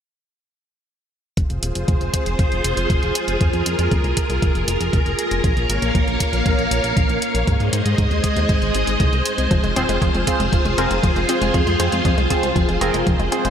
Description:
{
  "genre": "italo disco",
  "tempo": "118 BPM",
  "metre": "4/4",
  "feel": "straight",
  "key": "F minor",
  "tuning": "A4 = 440 Hz",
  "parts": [
    { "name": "string machine, full ensemble", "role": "sustained chords", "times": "1.4-13.5 s", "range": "Ab3 to F5", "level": "-21 LUFS", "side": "equal", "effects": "ensemble chorus" },
    { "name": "chorused synth bass", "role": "bass", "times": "1.4-13.5 s", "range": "Eb1 to Ab2", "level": "-23 LUFS", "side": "equal", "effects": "tube saturation" },
    { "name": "electronic hi-hat", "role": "drums", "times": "1.4-13.5 s", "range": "none", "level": "-27 LUFS", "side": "equal", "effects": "none" },
    { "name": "electronic kick drum", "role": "drums", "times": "1.4-13.2 s", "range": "none", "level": "-20 LUFS", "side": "equal", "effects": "none" },
    { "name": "wide unison pluck", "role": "arpeggios", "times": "9.5-13.5 s", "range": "F3 to C4", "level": "-25 LUFS", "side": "left 2 dB", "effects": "vintage 12-bit sampler grit, digital delay" },
    { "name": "chorused polysynth", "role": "stabs", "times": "9.8-13.5 s", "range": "C4 to C5", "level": "-23 LUFS", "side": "right 2 dB", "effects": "digital delay" }
  ],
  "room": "moderate lush hall reverb, RT60 2.0 s, digital ambience",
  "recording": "bright 1980s-style digital production",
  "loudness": "-16 LUFS",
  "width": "side -8 dB against mid",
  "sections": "1.4-13.5 A section",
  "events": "none",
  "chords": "1.4 Fm; 5.4 Bbm; 7.5 Ab; 9.5 Fm"
}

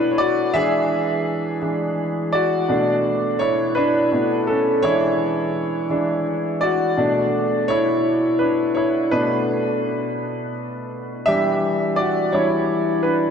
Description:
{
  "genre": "R&B",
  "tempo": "56 BPM (dotted quarters)",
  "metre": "6/8",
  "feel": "straight",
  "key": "B dorian",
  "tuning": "A4 = 440 Hz",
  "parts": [
    { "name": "clear grand piano", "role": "solo", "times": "0.0-13.3 s", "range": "B2 to E5", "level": "-18 LUFS", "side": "equal", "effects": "analog chorus, diffuse ambient delay" }
  ],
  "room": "wet cathedral reverb, RT60 4.9 s",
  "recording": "dreamy mix soaked in reverb",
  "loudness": "-18 LUFS",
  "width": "side -7 dB against mid",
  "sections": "0.0-11.3 A section; 11.3-13.3 B section",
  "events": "grand piano solo 0.0-11.3, 11.3-13.3",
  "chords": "0.0 Bm7; 0.5 E9; 2.7 Bm9; 4.8 E13; 7.0 Bm9; 9.1 Bm7; 11.3 Em9"
}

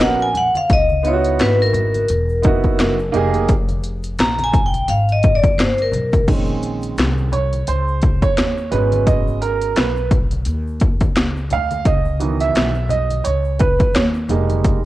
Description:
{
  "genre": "hip hop, jazz-hop",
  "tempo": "86 BPM",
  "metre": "4/4",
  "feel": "swing 57% on 16ths",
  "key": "unclear",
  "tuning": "A4 = 439 Hz",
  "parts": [
    { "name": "vibraphone with hard mallets", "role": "melody", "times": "0.0-6.2 s", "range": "Bb4 to Bb5", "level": "-18 LUFS", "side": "left 1 dB", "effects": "none" },
    { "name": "warm upright piano", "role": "accompaniment", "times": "0.0-14.8 s", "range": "Eb3 to F5", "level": "-20 LUFS", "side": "right 6 dB", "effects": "cassette tape" },
    { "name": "upright bass", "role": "bass", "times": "0.0-14.8 s", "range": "Fb1 to Eb2", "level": "-21 LUFS", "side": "equal", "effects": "none" },
    { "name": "techno drum kit", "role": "drums", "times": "0.0-14.8 s", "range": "crash cymbal, hi-hat, kick drum, snare drum", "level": "-17 LUFS", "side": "left 1 dB", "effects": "cassette tape" },
    { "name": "egg shaker and congas", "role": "percussion", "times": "0.0-14.8 s", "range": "none", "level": "-30 LUFS", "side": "left 5 dB", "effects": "none" }
  ],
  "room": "light reverb",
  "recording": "home recording on cassette",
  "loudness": "-15 LUFS",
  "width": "side -16 dB against mid",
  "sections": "0.0-6.3 A section; 6.3-14.8 A section",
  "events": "vibraphone solo 0.0-6.3; upright piano solo 6.3-14.8",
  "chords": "0.0 Abm11; 0.7 Dbm11; 3.1 Fm11; 6.3 Bbm11; 8.7 Abm7; 11.9 Dbm11; 14.3 Fm11"
}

